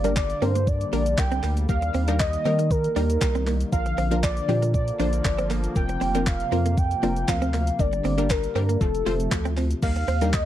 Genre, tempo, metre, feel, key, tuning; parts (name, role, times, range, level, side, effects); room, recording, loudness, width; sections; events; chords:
dance-pop; 118 BPM; 4/4; straight; Bb major; A4 = 439 Hz
warm velvety synth lead; melody; 0.0-10.5 s; A4 to G5; -28 LUFS; equal; chorus, tape echo
wide unison pluck; accompaniment; 0.0-10.5 s; F3 to C5; -29 LUFS; left 2 dB; sidechain pumping
sweeping resonant pad; sustained chords; 0.0-9.8 s; C3 to Bb3; -32 LUFS; left 2 dB; lush chorus, sidechain pumping
direct-recorded clean electric guitar; riff; 0.0-10.4 s; A3 to D4; -30 LUFS; right 5 dB; analog chorus
round analog bass; bass; 0.0-10.5 s; F1 to Eb3; -25 LUFS; equal; sidechain pumping
gated 80s digital drum machine; drums; 0.0-10.5 s; crash cymbal, handclaps, hi-hat, kick drum, shaker; -26 LUFS; equal; gated reverb
group handclap; percussion; 0.2-10.5 s; -44 LUFS; right 5 dB
little or no reverb; dry, close 1970s-style studio recording; -21 LUFS; side -12 dB against mid
0.0-9.8 A section
0.0 Gm; 1.7 Eb; 3.7 Bb; 5.8 Fsus4; 7.8 Gm; 8.8 F; 9.8 Eb